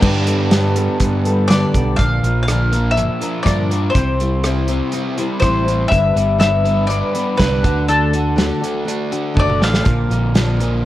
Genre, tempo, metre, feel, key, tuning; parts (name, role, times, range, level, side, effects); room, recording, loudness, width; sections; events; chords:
folk rock and heartland rock; 122 BPM; 4/4; straight; A4 = 441 Hz
picked steel-string acoustic guitar; accompaniment; 0.0-10.8 s; G2 to C5; -22 LUFS; left 3 dB
mellow tonewheel organ; sustained chords; 0.0-2.0 s; G4 to A5; -27 LUFS; right 4 dB; slow rotary speaker
crunchy overdriven guitar; riff; 0.0-10.9 s; G2 to G4; -22 LUFS; right 1 dB
fingered electric bass; bass; 0.0-10.9 s; F#1 to G2; -19 LUFS; equal
natural country drum kit; drums; 0.0-10.7 s; crash cymbal, hi-hat, kick drum, rim click, snare drum, toms; -18 LUFS; right 1 dB
bowl-back mandolin; melody; 1.5-10.8 s; A4 to F5; -20 LUFS; left 2 dB
light reverb, small room ambience; worn, warbling old tape, cassette tape, warbly pitch drift; -14 LUFS; side -14 dB against mid
0.0-2.0 A section; 2.0-10.9 B section
drum fill 9.4-9.9
0.0 Gadd9; 2.0 Bb; 3.9 C; 5.9 G; 7.6 D; 9.9 Bb